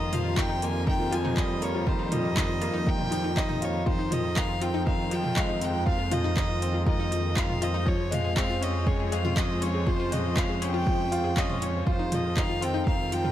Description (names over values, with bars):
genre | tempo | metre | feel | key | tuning
piano and strings electronica | 120 BPM | 4/4 | straight | F minor | A4 = 440 Hz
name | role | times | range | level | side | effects
warm violin | melody | 0.0-13.3 s | C5 to Ab5 | -33 LUFS | equal | ping-pong delay
clear studio string section | sustained chords | 0.0-13.3 s | Db3 to C5 | -37 LUFS | equal | none
bright concert grand piano | riff | 0.0-13.3 s | Eb3 to Ab4 | -31 LUFS | left 2 dB | ping-pong delay
rich chamber double bass section | bass | 0.0-13.3 s | F2 | -30 LUFS | right 1 dB | tube saturation, sidechain pumping
deep house drum kit | drums | 0.1-13.3 s | handclaps, hi-hat, toms | -33 LUFS | right 1 dB | overdrive, small room ambience
analog pluck | arpeggios | 0.2-13.3 s | Eb4 to G5 | -37 LUFS | left 5 dB | chorus, sidechain pumping, ping-pong delay
electronic kick drum | drums | 0.4-13.0 s | none | -28 LUFS | equal | overdrive, small room ambience
room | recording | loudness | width
light reverb, small room ambience | none | -24 LUFS | side -12 dB against mid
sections
0.0-13.3 A section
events
none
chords
0.0 Ebadd9/F; 3.9 Fm7; 7.9 Dbmaj7/F; 11.9 Fm7